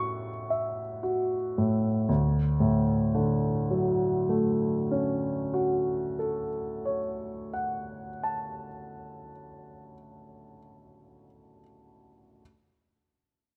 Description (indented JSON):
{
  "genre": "classical, impressionist solo piano",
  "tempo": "30 BPM",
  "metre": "4/4",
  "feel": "rubato",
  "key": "D major",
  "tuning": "A4 = 440 Hz",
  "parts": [
    { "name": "warm concert grand piano", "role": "solo", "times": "0.0-12.4 s", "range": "D2 to A6", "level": "-29 LUFS", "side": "equal", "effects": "none" }
  ],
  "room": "moderate scoring stage reverb, RT60 1.9 s",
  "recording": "none",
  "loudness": "-28 LUFS",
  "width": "mono",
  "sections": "0.0-2.1 A section; 2.1-10.1 B section",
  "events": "slowing down 0.0-2.1",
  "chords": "0.0 Dmaj9 (rootless); 2.1 Dmaj7"
}